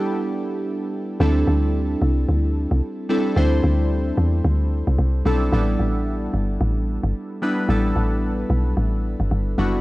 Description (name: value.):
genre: amapiano.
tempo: 111 BPM.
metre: 4/4.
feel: swing 58% on 16ths.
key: unclear.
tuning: A4 = 440 Hz.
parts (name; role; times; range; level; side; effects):
warm analog keys; accompaniment; 0.0-9.8 s; G3 to C5; -23 LUFS; equal; chorus, phaser, cassette tape.
deep log drum bass; bass; 1.2-9.8 s; F#1 to E2; -20 LUFS; equal; none.
room: light reverb.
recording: home recording on cassette.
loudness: -19 LUFS.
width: side -18 dB against mid.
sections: 0.0-1.2 A section; 1.2-9.8 B section.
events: drop 1.2-9.8.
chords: 0.0 A9sus4; 1.2 D9sus4; 5.5 A9sus4.